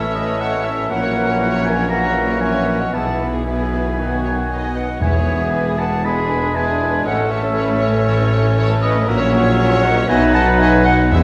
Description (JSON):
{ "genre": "classical", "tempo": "118 BPM", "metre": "4/4", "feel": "straight", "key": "E major", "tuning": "A4 = 440 Hz", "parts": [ { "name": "warm symphonic violin section", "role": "melody", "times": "0.0-11.2 s", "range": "F#4 to E5", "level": "-31 LUFS", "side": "equal", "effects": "none" }, { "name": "clear clarinet", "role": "second line", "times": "0.0-11.2 s", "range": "B3 to E4", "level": "-30 LUFS", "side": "equal", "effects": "none" }, { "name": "warm oboe", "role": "second line", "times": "0.0-11.2 s", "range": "D#5 to B5", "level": "-25 LUFS", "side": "equal", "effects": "none" }, { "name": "warm symphonic violin section", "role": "second line", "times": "0.0-11.2 s", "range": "F#4 to D#5", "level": "-32 LUFS", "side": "equal", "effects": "none" }, { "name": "rich symphonic viola section", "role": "accompaniment", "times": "0.0-11.2 s", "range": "F#3 to A4", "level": "-32 LUFS", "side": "equal", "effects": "none" }, { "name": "warm bassoon", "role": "accompaniment", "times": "0.0-11.2 s", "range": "D#3 to A3", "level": "-29 LUFS", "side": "equal", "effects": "none" }, { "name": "mellow French horn section", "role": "sustained chords", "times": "0.0-11.2 s", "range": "D#3 to E4", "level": "-30 LUFS", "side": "equal", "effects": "none" }, { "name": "concert harp", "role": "arpeggios", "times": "0.0-11.2 s", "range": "A2 to C#6", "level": "-31 LUFS", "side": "equal", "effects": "none" }, { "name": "mellow trumpet section", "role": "stabs", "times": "0.0-11.2 s", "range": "E4 to C#5", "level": "-28 LUFS", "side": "equal", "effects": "none" }, { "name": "rich symphonic cello section", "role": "bass", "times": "0.0-11.2 s", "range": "E2 to B2", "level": "-26 LUFS", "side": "equal", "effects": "none" }, { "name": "rich symphonic double bass section", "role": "bass", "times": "0.0-11.2 s", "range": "E1 to B1", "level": "-26 LUFS", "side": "equal", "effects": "none" }, { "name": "warm tuba", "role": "bass", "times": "0.0-11.2 s", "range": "E1 to B1", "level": "-27 LUFS", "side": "equal", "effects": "none" }, { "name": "concert flute", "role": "second line", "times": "0.1-11.2 s", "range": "B4 to G#5", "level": "-29 LUFS", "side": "equal", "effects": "none" }, { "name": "timpani", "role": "percussion", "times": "5.0-5.7, 11.1-11.2 s", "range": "E2", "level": "-21 LUFS", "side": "equal", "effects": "none" } ], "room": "wet scoring stage reverb, RT60 1.6 s", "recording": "none", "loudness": "-17 LUFS", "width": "mono", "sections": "0.0-11.2 A section", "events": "none", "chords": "0.0 A; 0.9 F#7/A#; 2.9 E/B; 4.0 B; 5.0 E; 6.0 E7; 7.1 A; 9.1 F#7/A#; 10.1 B" }